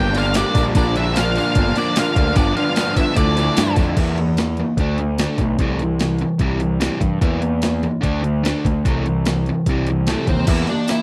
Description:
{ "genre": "indie rock", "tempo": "148 BPM", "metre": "4/4", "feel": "straight", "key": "D minor", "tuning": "A4 = 440 Hz", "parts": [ { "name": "octave-fuzz lead guitar", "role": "melody", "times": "0.0-3.7, 10.1-11.0 s", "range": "A3 to G5", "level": "-25 LUFS", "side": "equal", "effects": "distortion, slapback echo" }, { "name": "growling trumpet", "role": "second line", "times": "0.0-3.7 s", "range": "D4 to G4", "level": "-35 LUFS", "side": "equal", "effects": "none" }, { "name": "phased string machine", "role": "sustained chords", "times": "0.0-4.0 s", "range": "E3 to Bb5", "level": "-37 LUFS", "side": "equal", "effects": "none" }, { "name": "biting overdriven guitar", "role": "riff", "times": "0.0-11.0 s", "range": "G2 to E4", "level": "-23 LUFS", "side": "equal", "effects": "none" }, { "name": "electric guitar through a small old amp", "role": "riff", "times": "0.0-4.0, 10.5-11.0 s", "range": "G2 to G4", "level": "-28 LUFS", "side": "equal", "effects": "ensemble chorus, slapback echo" }, { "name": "fuzz picked electric bass", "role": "bass", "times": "0.0-10.6 s", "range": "G1 to G2", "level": "-24 LUFS", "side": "equal", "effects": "overdrive" }, { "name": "gated 80s digital drum machine", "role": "drums", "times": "0.1-11.0 s", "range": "crash cymbal, hi-hat, kick drum, snare drum, tambourine", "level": "-23 LUFS", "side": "equal", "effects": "gated reverb, gated reverb snare, overdrive" }, { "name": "tambourine", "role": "percussion", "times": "0.2-3.9, 10.5-11.0 s", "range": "none", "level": "-41 LUFS", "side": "equal", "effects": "none" } ], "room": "little or no reverb", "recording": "dry, close 1970s-style studio recording", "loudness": "-19 LUFS", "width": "mono", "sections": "0.0-4.0 A section; 4.0-10.5 B section", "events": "none", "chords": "0.0 Gm7; 2.4 G7; 3.2 Dmadd9; 4.0 N.C.; 4.8 D5; 5.6 Am/C; 6.4 C; 7.2 N.C.; 8.0 D5; 8.9 Am/C; 9.7 C; 10.5 Edim" }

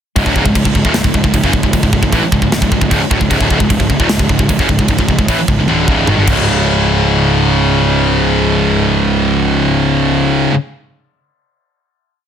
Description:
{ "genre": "heavy metal", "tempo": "152 BPM", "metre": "4/4", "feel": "straight", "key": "unclear", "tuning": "A4 = 440 Hz", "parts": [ { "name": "high-gain distorted guitar", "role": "riff", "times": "0.2-10.6 s", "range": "C#2 to E3", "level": "-16 LUFS", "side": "left 13 dB", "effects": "distortion" }, { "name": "high-gain distorted guitar", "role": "riff", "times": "0.2-10.5 s", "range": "C#2 to E3", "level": "-15 LUFS", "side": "right 8 dB", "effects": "distortion" }, { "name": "fuzz picked electric bass", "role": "bass", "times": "0.2-10.5 s", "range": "C#1 to A1", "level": "-17 LUFS", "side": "equal", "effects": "overdrive" }, { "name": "tight metal drum kit", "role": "drums", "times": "0.2-6.4 s", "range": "crash cymbal, kick drum, snare drum, toms", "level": "-16 LUFS", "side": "equal", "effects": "none" } ], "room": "little or no reverb", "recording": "dense, heavily limited modern master", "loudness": "-10 LUFS", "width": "side -8 dB against mid", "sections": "0.2-6.5 riff; 6.5-9.6 final hit", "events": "drum fill 5.7-6.5", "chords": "0.2 C#5" }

